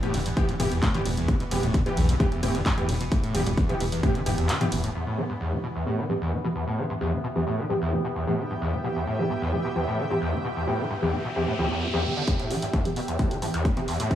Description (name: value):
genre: driving peak-time techno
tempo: 131 BPM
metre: 4/4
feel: straight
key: E minor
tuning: A4 = 439 Hz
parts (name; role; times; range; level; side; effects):
- screaming distorted acid line; riff; 0.0-14.2 s; D2 to E3; -28 LUFS; equal; distortion, lush chorus, sidechain pumping, tape echo
- rave stab; stabs; 0.0-13.8 s; E3 to G4; -30 LUFS; equal; chorus, built-in reverb, sidechain pumping, tape echo
- overtone-sweeping drone; drone; 0.0-12.3 s; E3 to B3; -36 LUFS; equal; chorus, built-in reverb, sidechain pumping
- punchy analog drum machine; drums; 0.0-5.0, 12.3-14.2 s; crash cymbal, handclaps, hi-hat, ride cymbal, toms; -33 LUFS; right 1 dB; sidechain pumping on hats, low-pass filter on hats, sidechain pumping on cymbals, low-pass filter on cymbals, sidechain pumping on toms, low-pass filter on toms, low-pass filter on snare
- tight sequencer bass; bass; 0.1-4.9 s; E1 to B1; -28 LUFS; equal; sidechain pumping
- electronic kick drum; drums; 0.4-4.1, 12.3-14.2 s; none; -26 LUFS; equal; none
- granular cloud pad; texture; 6.5-14.2 s; B3 to G5; -34 LUFS; right 1 dB; built-in reverb, sidechain pumping
- riser; sound effects; 10.2-14.2 s; none; -36 LUFS; right 1 dB; none
room: digital ambience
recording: dry, gritty hardware recording, studio reverb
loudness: -23 LUFS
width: side -11 dB against mid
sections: 0.0-4.9 A section; 4.9-12.3 B section; 12.3-14.2 C section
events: drop 0.0-4.9; kick drops out 4.5-4.9; band accent 4.5; filter sweep on drum 4.9-12.3; filter sweep on synth stab 4.9-12.3, 12.3-14.2; riser 10.2-12.3, 12.3-14.2; build-up 12.3-14.2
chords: 0.0 Em